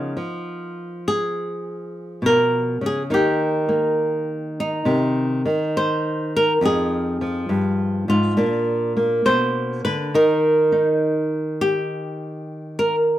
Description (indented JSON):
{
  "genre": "solo jazz",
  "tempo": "68 BPM",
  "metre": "4/4",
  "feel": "swing 68% on 8ths",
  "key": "Eb major",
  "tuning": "A4 = 440 Hz",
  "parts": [
    { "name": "flamenco guitar", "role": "solo", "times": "0.0-13.2 s", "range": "F2 to C5", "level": "-19 LUFS", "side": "equal", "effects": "none" }
  ],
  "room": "light reverb",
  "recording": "none",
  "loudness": "-18 LUFS",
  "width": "side -13 dB against mid",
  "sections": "0.0-13.2 A section",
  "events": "none",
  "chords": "0.0 Db9; 3.1 Eb; 4.9 Cm; 6.6 Fm7; 8.4 Bb; 10.1 Eb"
}